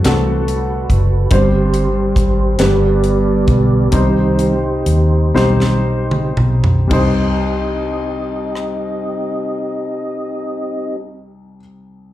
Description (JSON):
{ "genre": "slow gospel", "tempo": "36-47 BPM (dotted quarters)", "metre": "6/8", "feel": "straight", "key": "C harmonic minor", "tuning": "A4 = 440 Hz", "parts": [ { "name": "warm upright piano", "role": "accompaniment", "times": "0.0-12.1 s", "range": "C2 to C5", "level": "-20 LUFS", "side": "left 3 dB", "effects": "plate reverb" }, { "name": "vintage muted fingered electric bass", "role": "bass", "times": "0.0-11.6 s", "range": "F#1 to Eb2", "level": "-16 LUFS", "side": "equal", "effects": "none" }, { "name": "tight funk drum kit", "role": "drums", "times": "0.0-8.8 s", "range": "crash cymbal, hi-hat, kick drum, rim click, snare drum, toms", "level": "-18 LUFS", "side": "equal", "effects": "none" }, { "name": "percussive tonewheel organ", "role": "sustained chords", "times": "0.1-11.0 s", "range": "D3 to Eb5", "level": "-18 LUFS", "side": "right 2 dB", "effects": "slow rotary speaker, chorus vibrato, plate reverb" } ], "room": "moderate club reverb, RT60 0.7 s", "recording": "live gig heard through the venue's PA, club reverb", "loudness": "-13 LUFS", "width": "side -14 dB against mid", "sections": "0.0-6.9 A section; 6.9-10.2 B section", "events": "tonewheel organ solo 0.0-6.9; slowing down 1.3-6.9; drum fill 5.4-6.9", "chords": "0.0 D7; 1.3 Gsus4; 2.6 G; 3.9 Cm" }